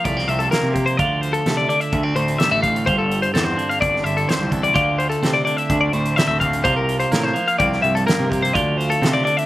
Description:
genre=math rock and midwest emo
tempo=127 BPM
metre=4/4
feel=straight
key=D minor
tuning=A4 = 440 Hz
part: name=twelve-string electric guitar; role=accompaniment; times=0.0-9.5 s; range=D2 to F4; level=-22 LUFS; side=right 3 dB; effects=none
part: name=twelve-string electric guitar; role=arpeggios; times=0.0-9.5 s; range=G4 to F5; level=-20 LUFS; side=left 4 dB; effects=slapback echo
part: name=fuzz picked electric bass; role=bass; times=0.1-9.2 s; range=G1 to C3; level=-24 LUFS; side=equal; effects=overdrive
part: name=loose indie drum kit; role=drums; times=0.1-9.5 s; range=hi-hat, kick drum, snare drum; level=-24 LUFS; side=right 1 dB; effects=none
room=little or no reverb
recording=none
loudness=-16 LUFS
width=side -15 dB against mid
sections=0.0-9.5 A section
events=none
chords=0.0 C7sus4; 1.0 Dm9; 2.9 G9sus4; 4.8 Dm9; 6.6 C7sus4; 8.5 Dm7

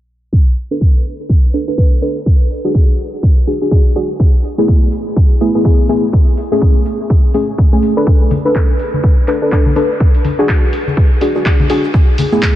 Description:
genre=deep house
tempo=124 BPM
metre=4/4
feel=swing 59% on 16ths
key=B dorian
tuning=A4 = 441 Hz
part: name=electronic kick drum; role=drums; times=0.3-12.5 s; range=none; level=-10 LUFS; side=equal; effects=none
part: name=punchy analog drum machine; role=drums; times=0.6-12.5 s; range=handclaps, hi-hat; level=-24 LUFS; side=equal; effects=none
part: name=deep mellow chord stab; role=stabs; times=0.7-12.6 s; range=A3 to B4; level=-16 LUFS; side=equal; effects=chorus, sidechain pumping, analog delay
part: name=egg shaker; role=percussion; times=8.1-12.5 s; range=none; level=-46 LUFS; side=right 4 dB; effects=none
part: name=congas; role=percussion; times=8.3-12.3 s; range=none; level=-19 LUFS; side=left 3 dB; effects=none
room=light reverb, small room ambience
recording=low-pass filter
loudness=-10 LUFS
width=side -13 dB against mid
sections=0.3-12.6 A section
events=filter sweep on synth stab 0.3-12.6; filter sweep 0.3-12.6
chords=0.3 Bm7; 2.3 D; 4.2 Eadd11/A; 6.1 Amaj7; 8.1 Bm7; 10.0 D; 11.9 Eadd11/A

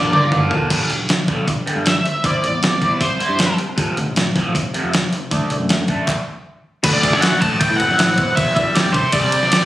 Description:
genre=indie rock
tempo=156 BPM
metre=4/4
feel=straight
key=unclear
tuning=A4 = 440 Hz
part: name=octave-fuzz lead guitar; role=melody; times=0.0-3.6, 6.8-9.7 s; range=B4 to A5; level=-18 LUFS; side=equal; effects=distortion, digital delay
part: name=raw garage guitar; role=riff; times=0.0-9.7 s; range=E2 to G4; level=-22 LUFS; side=equal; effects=overdrive, phaser
part: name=modern bright fingered electric bass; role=bass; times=0.0-9.7 s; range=E1 to C3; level=-23 LUFS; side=equal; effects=none
part: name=crisp 8-bit digital drum machine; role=drums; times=0.1-9.6 s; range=crash cymbal, handclaps, hi-hat, kick drum, ride cymbal, snare drum, toms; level=-19 LUFS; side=equal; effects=none
room=light reverb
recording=recorded on a phone in the room, studio reverb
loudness=-15 LUFS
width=side -14 dB against mid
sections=0.7-6.9 A section; 6.9-9.7 B section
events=drum fill 0.0-0.7; stop 6.1-6.9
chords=0.0 Bb; 0.7 G; 2.2 C/G; 3.8 F; 5.3 D; 7.4 Am; 8.4 Em; 8.9 Csus2

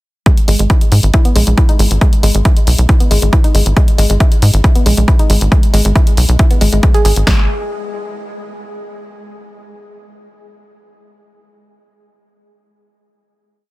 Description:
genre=driving peak-time techno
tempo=137 BPM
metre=4/4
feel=straight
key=G# minor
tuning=A4 = 440 Hz
part: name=woody wave-folded pluck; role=riff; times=0.3-7.5 s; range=G#3 to G#4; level=-20 LUFS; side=equal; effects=chorus, tube saturation, sidechain pumping, dub echo
part: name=electronic hi-hat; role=drums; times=0.3-7.2 s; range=none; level=-21 LUFS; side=left 1 dB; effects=sidechain pumping on hats
part: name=punchy analog drum machine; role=drums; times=0.3-7.4 s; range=kick drum, snare drum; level=-10 LUFS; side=equal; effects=none
part: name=tight sequencer bass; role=bass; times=0.5-7.5 s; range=G#1 to G#2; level=-11 LUFS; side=equal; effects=sidechain pumping
room=little or no reverb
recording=dense, heavily limited modern master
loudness=-9 LUFS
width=side -19 dB against mid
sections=0.3-7.3 groove; 7.3-9.0 final note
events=none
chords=0.3 G#5; 7.3 N.C.

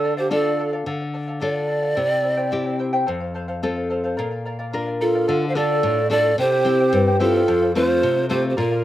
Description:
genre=andean folk, Andean ensemble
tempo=109 BPM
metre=2/4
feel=straight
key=D minor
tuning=A4 = 440 Hz
part: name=breathy mellow polished pan flute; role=melody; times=0.0-2.8, 5.0-8.8 s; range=A4 to F5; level=-21 LUFS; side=right 2 dB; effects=none
part: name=wooden-headed alto flute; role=second line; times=0.0-0.7, 5.0-8.8 s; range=F4 to C5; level=-22 LUFS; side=right 1 dB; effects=slapback echo
part: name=charango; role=accompaniment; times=0.0-8.8 s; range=E4 to G5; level=-28 LUFS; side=left 1 dB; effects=slapback echo
part: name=nylon-string guitar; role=accompaniment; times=0.0-8.8 s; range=F2 to Bb4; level=-23 LUFS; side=left 2 dB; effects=none
room=little or no reverb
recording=recorded outdoors, with no room sound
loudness=-18 LUFS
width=side -13 dB against mid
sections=0.9-5.3 A section; 5.3-8.8 B section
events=none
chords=0.0 Dm; 2.0 C; 3.1 F; 4.2 Bb; 5.3 Dm; 6.4 C; 7.5 F

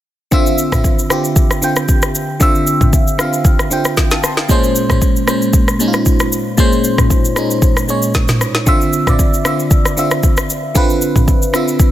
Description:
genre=amapiano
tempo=115 BPM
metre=4/4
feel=swing 55% on 16ths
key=unclear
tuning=A4 = 440 Hz
part: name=FM electric piano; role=accompaniment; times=0.3-11.9 s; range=Bb2 to C6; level=-15 LUFS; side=equal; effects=chorus, phaser
part: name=afro-pop drum kit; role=drums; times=0.3-11.9 s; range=kick drum, rim click, shaker, snare drum, toms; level=-13 LUFS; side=equal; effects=soft clipping on snare
room=little or no reverb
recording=dense, heavily limited modern master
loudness=-11 LUFS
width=side -13 dB against mid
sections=0.3-11.9 A section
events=none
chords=0.3 Dm9; 4.5 Bbm9; 8.7 Dm9

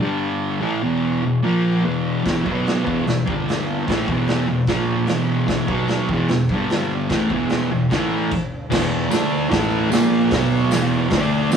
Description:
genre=garage rock duo or trio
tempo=149 BPM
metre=4/4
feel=straight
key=unclear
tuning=A4 = 440 Hz
part: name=fuzz guitar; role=riff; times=0.0-11.6 s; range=E2 to D4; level=-18 LUFS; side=equal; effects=distortion
part: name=raw garage drum kit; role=drums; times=2.3-11.6 s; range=crash cymbal, hi-hat, kick drum, snare drum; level=-23 LUFS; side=right 1 dB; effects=none
part: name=tambourine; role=percussion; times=9.1-11.6 s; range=none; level=-34 LUFS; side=left 5 dB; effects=none
room=moderate booth ambience, RT60 0.2 s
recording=rough rehearsal-room recording, warm saturation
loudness=-17 LUFS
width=side -7 dB against mid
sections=0.0-8.7 A section; 8.7-11.6 B section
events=stop 8.3-8.7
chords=0.0 G5; 0.6 E5; 1.4 A#5; 1.8 E5; 2.4 B5; 2.8 E5; 3.3 G5; 3.9 E5; 4.7 A#5; 5.1 E5; 5.7 B5; 6.1 E5; 6.5 G5; 7.1 E5; 7.9 A5; 8.3 N.C.; 8.7 E5; 9.1 D5; 9.5 A5; 9.9 A#5; 10.3 B5; 10.7 E5; 11.1 D5

